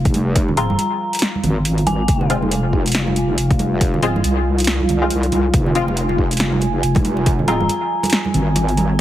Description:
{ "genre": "deep dubstep", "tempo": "139 BPM", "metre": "4/4", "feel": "swing 59% on 16ths, half-time", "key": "F minor", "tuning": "A4 = 440 Hz", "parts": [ { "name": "dark analog pad", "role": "sustained chords", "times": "0.0-9.0 s", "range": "F4 to Ab5", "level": "-24 LUFS", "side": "right 1 dB", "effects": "chorus, phaser" }, { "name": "wobble bass", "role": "bass", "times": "0.0-9.0 s", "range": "F1 to C2", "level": "-18 LUFS", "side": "equal", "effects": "chorus" }, { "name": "deep house drum kit", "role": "drums", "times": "0.1-8.9 s", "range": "hi-hat, snare drum", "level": "-22 LUFS", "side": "equal", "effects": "overdrive" }, { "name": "electronic kick drum", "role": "drums", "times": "0.1-7.4 s", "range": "none", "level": "-18 LUFS", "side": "equal", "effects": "overdrive" }, { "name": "congas", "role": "percussion", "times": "0.1-8.9 s", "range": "none", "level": "-24 LUFS", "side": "right 3 dB", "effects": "dub echo" }, { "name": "dark detuned synth bell", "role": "melody", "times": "0.6-2.3, 7.5-7.9 s", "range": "Ab5 to Bb5", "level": "-25 LUFS", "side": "left 1 dB", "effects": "chorus, dub echo" }, { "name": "filtered dub chord stab", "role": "stabs", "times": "0.6-7.6 s", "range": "Ab3 to F4", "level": "-25 LUFS", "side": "left 3 dB", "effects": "ensemble chorus, dub echo" } ], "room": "light reverb", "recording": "heavily compressed radio sound", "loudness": "-15 LUFS", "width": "side -13 dB against mid", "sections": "0.0-9.0 A section", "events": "none", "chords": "0.0 Fm", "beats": "| 0.36 0.79 1.22 1.65 | 2.08 2.52 2.95 3.38 | 3.81 4.24 4.67 5.11 | 5.54 5.97 6.40 6.83 | 7.26 7.70 8.13 8.56 | 8.99" }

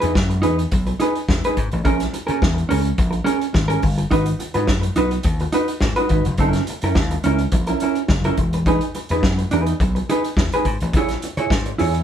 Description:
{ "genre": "disco", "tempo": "106 BPM", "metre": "4/4", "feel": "straight", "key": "unclear", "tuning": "A4 = 441 Hz", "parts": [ { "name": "mellow electric guitar", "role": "accompaniment", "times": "0.0-12.0 s", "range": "C#4 to C#5", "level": "-21 LUFS", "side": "right 2 dB", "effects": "none" }, { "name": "vintage slap bass", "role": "bass", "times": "0.0-12.0 s", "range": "E1 to A#2", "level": "-21 LUFS", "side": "left 1 dB", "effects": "none" }, { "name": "vintage drum kit", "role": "drums", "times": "0.0-12.0 s", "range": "hi-hat, kick drum, snare drum", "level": "-22 LUFS", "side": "left 1 dB", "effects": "none" } ], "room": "moderate studio reverb, RT60 0.6 s", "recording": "band playing live in one room", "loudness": "-17 LUFS", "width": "side -9 dB against mid", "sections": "0.0-12.0 A section", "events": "none", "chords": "0.0 Emaj7; 1.9 A#m7; 4.1 G#m7; 6.4 F#7; 8.4 Emaj7; 10.9 A#m7b5", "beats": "0.15 0.72 1.28 | 1.85 2.42 2.98 3.55 | 4.12 4.69 5.25 5.82 | 6.39 6.96 7.53 8.10 | 8.66 9.23 9.80 10.37 | 10.94 11.51" }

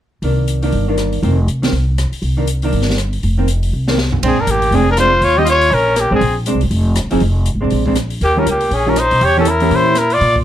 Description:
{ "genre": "jazz, small-group swing and bop", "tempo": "241 BPM", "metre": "4/4", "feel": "swing 59% on 8ths", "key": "Bb mixolydian", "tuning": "A4 = 440 Hz", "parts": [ { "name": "hollow-body jazz guitar", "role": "accompaniment", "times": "0.2-9.9 s", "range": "Eb3 to Ab4", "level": "-18 LUFS", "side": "right 1 dB", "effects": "none" }, { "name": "upright bass", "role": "bass", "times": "0.2-10.4 s", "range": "F1 to Cb3", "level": "-16 LUFS", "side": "equal", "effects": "none" }, { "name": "open jazz drum kit", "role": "drums", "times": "0.2-10.4 s", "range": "hi-hat, kick drum, ride cymbal, rim click, snare drum, toms", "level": "-24 LUFS", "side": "equal", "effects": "none" }, { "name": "clear tenor saxophone", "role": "second line", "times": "4.2-10.4 s", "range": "Bb3 to G4", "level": "-18 LUFS", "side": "right 2 dB", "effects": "none" }, { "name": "clear trumpet", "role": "melody", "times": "4.3-10.4 s", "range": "G4 to Eb5", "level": "-14 LUFS", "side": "left 2 dB", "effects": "none" } ], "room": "light reverb", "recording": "none", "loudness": "-12 LUFS", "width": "side -11 dB against mid", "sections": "0.2-4.2 A section; 4.2-10.4 B section", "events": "drum fill 3.7-4.2", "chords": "0.2 Cm9; 1.2 F7sus4; 2.2 Cm9; 3.2 F7sus4; 4.2 Bb9; 5.2 Eb9; 6.2 Bb9; 7.2 Fm; 7.7 Bb9; 8.2 Eb9; 9.2 Edim7", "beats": "| 0.23 0.48 0.73 0.98 | 1.23 1.48 1.73 1.98 | 2.23 2.48 2.73 2.98 | 3.23 3.48 3.73 3.98 | 4.23 4.47 4.72 4.97 | 5.22 5.47 5.72 5.97 | 6.22 6.47 6.72 6.97 | 7.22 7.47 7.72 7.97 | 8.22 8.46 8.71 8.96 | 9.21 9.46 9.71 9.96 | 10.21" }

